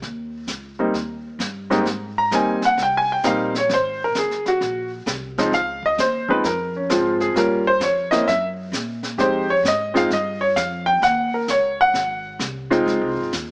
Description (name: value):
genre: jazz piano trio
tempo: 131 BPM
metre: 4/4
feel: swing 66% on 8ths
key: Ab major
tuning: A4 = 440 Hz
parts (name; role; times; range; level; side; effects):
- upright bass; bass; 0.0-13.5 s; Gb1 to Bb2; -34 LUFS; equal; none
- jazz brush drum kit; drums; 0.0-13.5 s; brushed snare drum, hi-hat, kick drum, snare drum; -31 LUFS; equal; none
- clear baby grand piano; melody; 0.8-13.3 s; Ab2 to Bb5; -21 LUFS; equal; plate reverb
room: moderate studio reverb, RT60 0.8 s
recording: small speaker sound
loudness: -21 LUFS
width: mono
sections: 0.0-1.9 A section; 1.9-13.5 B section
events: grand piano solo 1.9-13.5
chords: 0.0 Abmaj7(no3) (rootless); 1.9 Abmaj7; 3.7 Ab7; 5.5 Dbmaj9; 7.4 Gm7b5; 8.3 Gb; 9.2 Fm7; 11.0 Gb5; 11.9 Ab7; 12.9 Dbmaj7